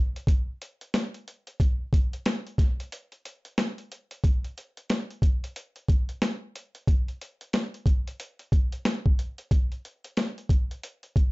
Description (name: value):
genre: hip hop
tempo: 91 BPM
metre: 4/4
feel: swing 61% on 16ths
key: none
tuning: none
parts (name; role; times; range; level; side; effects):
- boom bap sampler-style drum kit; drums; 0.2-11.3 s; hi-hat, kick drum, snare drum; -24 LUFS; equal; vintage 12-bit sampler grit
room: light reverb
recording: dark, warm production, nothing above 7.8 kHz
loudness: -25 LUFS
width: side -23 dB against mid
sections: 0.0-4.2 A section; 4.2-11.3 B section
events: break 2.9-4.2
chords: none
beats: 0.28 0.94 | 1.60 2.26 2.92 3.58 | 4.24 4.89 5.55 6.21 | 6.87 7.53 8.19 8.85 | 9.51 10.17 10.83